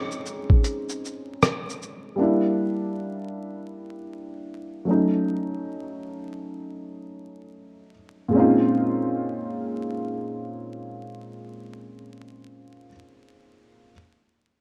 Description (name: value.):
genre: lo-fi hip hop.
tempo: 78 BPM.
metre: 4/4.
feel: swing 65% on 16ths.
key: Bb minor.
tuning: A4 = 441 Hz.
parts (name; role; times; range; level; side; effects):
dark upright piano; accompaniment; 0.0-13.9 s; Bb2 to F4; -27 LUFS; equal; cassette tape.
lo-fi sampler-style drum kit; drums; 0.1-2.0 s; hi-hat, kick drum, rim click, shaker; -23 LUFS; equal; none.
room: moderate plate reverb, RT60 2.2 s.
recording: rough home demo mix, vinyl crackle.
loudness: -25 LUFS.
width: mono.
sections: 0.0-8.3 A section; 8.3-11.4 B section.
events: none.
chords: 0.0 Bbm11 (rootless); 2.2 Gm6; 4.9 Gbm6; 8.3 Bbm11.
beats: 0.65 1.41 | 2.18 2.95 3.72 4.49 | 5.26 6.03 6.80 7.57 | 8.34 9.11 9.88 10.64.